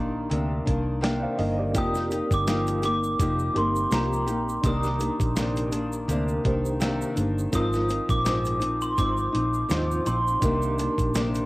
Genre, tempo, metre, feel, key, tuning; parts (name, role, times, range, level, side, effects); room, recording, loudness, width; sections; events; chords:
indie pop, bedroom pop; 83 BPM; 4/4; swing 55% on 16ths; C minor; A4 = 439 Hz
bright reed electric piano; accompaniment; 0.0-11.5 s; C4 to G5; -32 LUFS; right 1 dB; fast tremolo, cassette tape
nylon-string guitar; accompaniment; 0.0-11.5 s; Ab2 to G4; -28 LUFS; left 1 dB; lush chorus, vibrato effect, cassette tape
vintage muted fingered electric bass; bass; 0.0-11.5 s; F1 to Eb2; -28 LUFS; equal
dusty soul sampler-style drum kit; drums; 0.3-11.5 s; hi-hat, kick drum, snare drum; -28 LUFS; equal; cassette tape
egg shaker; percussion; 1.7-11.5 s; -44 LUFS; right 4 dB
glockenspiel with soft plastic mallets; melody; 1.8-11.5 s; Bb5 to Eb6; -29 LUFS; equal; lush chorus, cassette tape
moderate studio reverb, RT60 0.6 s; home recording on cassette; -22 LUFS; side -20 dB against mid
0.0-11.5 A section
0.0 Cm9; 1.8 F9sus4; 4.6 Cm9; 7.5 Ab6; 10.4 Cm9